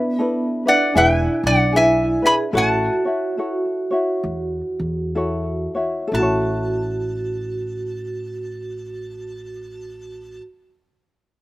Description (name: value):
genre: Hawaiian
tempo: 60-80 BPM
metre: 4/4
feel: swing 62% on 8ths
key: A major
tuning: A4 = 440 Hz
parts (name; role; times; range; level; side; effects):
- metal-body resonator slide guitar; melody; 0.0-10.4 s; B4 to B5; -18 LUFS; equal; none
- vibraphone with medium hard mallets; second line; 0.0-10.4 s; B3 to G#4; -25 LUFS; right 2 dB; none
- ukulele; accompaniment; 0.0-10.5 s; D4 to C#5; -23 LUFS; left 2 dB; slapback echo
- upright bass; bass; 1.0-10.4 s; E1 to E2; -26 LUFS; equal; none
room: little or no reverb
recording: recorded outdoors, with no room sound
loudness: -18 LUFS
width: side -17 dB against mid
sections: 0.0-6.1 A section; 6.1-10.1 B section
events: slowing down 0.0-6.1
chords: 0.0 E7sus4; 0.9 E7; 2.5 A6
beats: 0.19 0.95 1.73 | 2.54 3.37 4.24 5.16 | 6.13 7.13 8.13 9.13